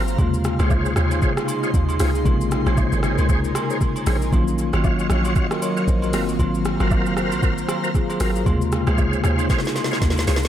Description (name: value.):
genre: amapiano.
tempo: 116 BPM.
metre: 4/4.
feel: swing 58% on 16ths.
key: unclear.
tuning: A4 = 438 Hz.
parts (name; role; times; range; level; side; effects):
tine electric piano; accompaniment; 0.0-10.5 s; C3 to Eb5; -24 LUFS; left 2 dB; fast stereo tremolo.
airy breathy pad; sustained chords; 0.0-10.5 s; Gb3 to Db6; -28 LUFS; right 1 dB; chorus, sidechain pumping.
overdriven tonewheel organ; stabs; 0.0-10.4 s; F4 to F5; -28 LUFS; right 1 dB; chorus vibrato, fast rotary speaker, dub echo.
hollow log drum bass; bass; 0.0-10.5 s; Gb1 to Eb2; -22 LUFS; equal; none.
smooth R&B drum kit; drums; 0.1-10.5 s; hi-hat, kick drum, rim click, shaker, snare drum; -23 LUFS; equal; dub echo.
agogo bells and woodblock; percussion; 0.2-10.3 s; none; -34 LUFS; right 4 dB; dub echo.
room: digital ambience.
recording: echo-heavy mix.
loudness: -18 LUFS.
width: side -11 dB against mid.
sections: 0.0-10.5 A section.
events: drum fill 9.5-10.5.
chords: 0.2 Eb13sus4; 2.3 Bbm9; 4.3 Ebm9; 6.1 Ab13; 8.5 Eb13sus4.